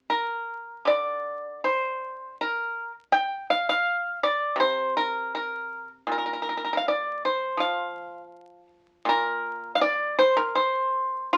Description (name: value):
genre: chinese traditional, Chinese solo plucked strings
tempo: 80 BPM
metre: 2/4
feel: rubato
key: unclear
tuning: A4 = 442 Hz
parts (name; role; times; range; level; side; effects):
- pipa; solo; 0.0-11.4 s; Bb2 to G5; -26 LUFS; equal; none
room: moderate studio reverb, RT60 0.5 s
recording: very old 78 rpm record, vinyl crackle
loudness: -26 LUFS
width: mono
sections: 0.1-11.4 A section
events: none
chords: none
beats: | 0.11 0.88 | 1.64 2.39 | 3.12 3.85 | 4.58 5.34 | 6.10 6.86 | 7.61 8.34 | 9.08 9.81 | 10.54 11.30